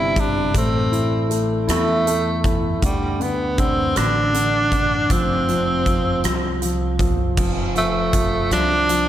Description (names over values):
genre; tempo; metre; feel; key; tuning
six-eight pop ballad; 53 BPM (dotted quarters); 6/8; straight; unclear; A4 = 443 Hz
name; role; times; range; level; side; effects
breathy tenor saxophone; melody; 0.0-9.1 s; G3 to E4; -21 LUFS; right 1 dB; tape echo
warm concert grand piano; accompaniment; 0.0-9.1 s; C3 to E4; -24 LUFS; left 1 dB; slapback echo
upright bass; bass; 0.0-9.1 s; F1 to E2; -24 LUFS; equal; none
huge arena drum kit; drums; 0.2-9.1 s; crash cymbal, hi-hat, kick drum, rim click; -23 LUFS; equal; none
room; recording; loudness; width
moderate concert hall reverb, RT60 2.4 s; big arena sound; -17 LUFS; side -12 dB against mid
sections
0.0-7.4 A section; 7.4-9.1 B section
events
none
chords
0.0 C5; 0.5 Am; 2.8 D5; 5.1 F5